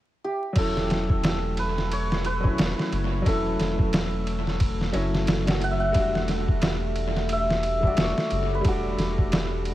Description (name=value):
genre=trip hop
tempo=89 BPM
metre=4/4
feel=swing 59% on 16ths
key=unclear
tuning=A4 = 440 Hz
part: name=santur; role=melody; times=0.2-9.7 s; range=G4 to F#5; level=-29 LUFS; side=equal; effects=vintage 12-bit sampler grit, tape echo
part: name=warm upright piano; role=accompaniment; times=0.5-9.7 s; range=F#3 to F#4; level=-30 LUFS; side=equal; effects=harmonic tremolo, tape echo
part: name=warbly tape-like pad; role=sustained chords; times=0.9-9.7 s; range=A3 to A4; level=-34 LUFS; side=left 1 dB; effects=chorus, built-in reverb
part: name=round analog bass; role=bass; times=0.6-9.7 s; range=E1 to F#1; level=-29 LUFS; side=equal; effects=none
part: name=trip hop sampler-style drum kit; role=drums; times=0.6-9.7 s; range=crash cymbal, kick drum, ride cymbal, snare drum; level=-26 LUFS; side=equal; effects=analog delay
room=light reverb, digital ambience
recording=echo-heavy mix, vinyl crackle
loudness=-22 LUFS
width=side -14 dB against mid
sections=0.6-9.7 A section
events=break 0.0-0.6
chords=0.0 N.C.; 0.6 A69/E; 6.0 Em7